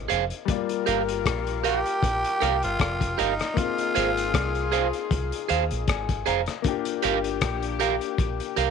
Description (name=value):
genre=lovers rock reggae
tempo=78 BPM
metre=4/4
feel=swing 55% on 16ths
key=G phrygian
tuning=A4 = 439 Hz
part: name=warm horn section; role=second line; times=0.0-8.7 s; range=Bb3 to Bb4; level=-32 LUFS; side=left 13 dB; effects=none
part: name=clear concert grand piano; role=accompaniment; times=0.0-8.7 s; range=G3 to Bb5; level=-32 LUFS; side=left 13 dB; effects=slapback echo
part: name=deep dub fingered electric bass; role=bass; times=0.0-8.7 s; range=F1 to Eb2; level=-31 LUFS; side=right 1 dB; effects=none
part: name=electric guitar at the edge of break-up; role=stabs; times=0.1-8.7 s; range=G4 to F5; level=-26 LUFS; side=right 16 dB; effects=none
part: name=cloth-damped thuddy drum kit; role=drums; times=0.1-8.7 s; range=hi-hat, kick drum, rim click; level=-29 LUFS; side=left 4 dB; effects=none
part: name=growling tenor saxophone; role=melody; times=1.7-5.1 s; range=Eb4 to G4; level=-28 LUFS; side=equal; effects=tape echo
room=light reverb, small room ambience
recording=1960s-style stereo with parts hard left and right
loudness=-23 LUFS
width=side -6 dB against mid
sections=0.0-8.7 A section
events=grand piano fill 5.1-6.6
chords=0.5 Gm7; 3.6 Ab6; 6.6 Gm7